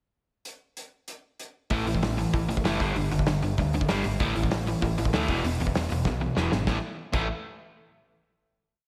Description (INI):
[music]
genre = punk rock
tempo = 194 BPM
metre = 4/4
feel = straight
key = unclear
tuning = A4 = 443 Hz
[part]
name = loose indie drum kit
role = drums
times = 0.5-7.2 s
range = crash cymbal, hi-hat, kick drum, snare drum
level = -32 LUFS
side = equal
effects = none
[part]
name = overdriven electric guitar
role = riff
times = 1.7-7.3 s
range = E2 to A3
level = -32 LUFS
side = equal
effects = slapback echo
[part]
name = sludgy distorted guitar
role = riff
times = 1.7-7.3 s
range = E2 to A3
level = -33 LUFS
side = equal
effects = overdrive, slapback echo
[part]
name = overdriven picked electric bass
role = bass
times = 1.7-7.3 s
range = E1 to D2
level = -33 LUFS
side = equal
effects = none
[sound]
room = moderate recital hall reverb, RT60 1.6 s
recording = none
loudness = -27 LUFS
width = mono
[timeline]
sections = 0.5-1.7 pickup bar; 1.7-6.7 verse; 6.7-7.9 final chord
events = drum fill 6.1-6.7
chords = 0.5 N.C.; 1.7 A5; 2.8 G5; 4.2 A5; 5.3 E5; 6.7 A5